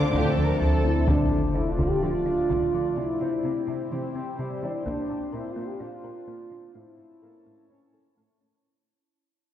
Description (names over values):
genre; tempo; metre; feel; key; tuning
cinematic, hybrid orchestral and electronic film score; 127 BPM; 4/4; straight; D minor; A4 = 439 Hz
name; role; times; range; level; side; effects
rich symphonic violin section; melody; 0.0-0.6 s; D6; -37 LUFS; equal; none
warm symphonic violin section; second line; 0.0-1.1 s; F4 to Bb4; -32 LUFS; equal; none
warm studio viola section; accompaniment; 0.0-0.6 s; D4; -37 LUFS; equal; none
warbly tape-like pad; sustained chords; 0.0-8.6 s; A3 to A5; -33 LUFS; left 2 dB; chorus, built-in reverb
thumb-piano-like synth pluck; arpeggios; 0.0-8.5 s; C3 to Bb4; -34 LUFS; left 1 dB; chorus, digital delay
round analog bass; riff; 0.0-1.0 s; D2; -28 LUFS; left 1 dB; none
warm symphonic cello section; bass; 0.0-8.5 s; A2 to D3; -35 LUFS; right 1 dB; none
warm symphonic double bass section; bass; 0.0-1.0 s; D2; -27 LUFS; right 2 dB; none
clear grand piano; texture; 0.0-8.7 s; Bb3 to D5; -42 LUFS; left 1 dB; none
warm French horn section; sustained chords; 0.1-8.4 s; G3 to G4; -28 LUFS; equal; none
taiko ensemble; drums; 0.1-5.8 s; none; -32 LUFS; equal; none
sub drop; sound effects; 1.1-3.0 s; none; -29 LUFS; equal; none
room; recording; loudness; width
wet scoring stage reverb, RT60 1.8 s; heard from further back in the room; -23 LUFS; side -11 dB against mid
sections
0.0-1.1 A section; 1.1-8.6 B section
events
fade-out 1.1-8.6; impact 1.1-3.0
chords
0.0 Dm7; 1.1 Dm; 3.0 C; 4.9 Bbadd9; 6.7 A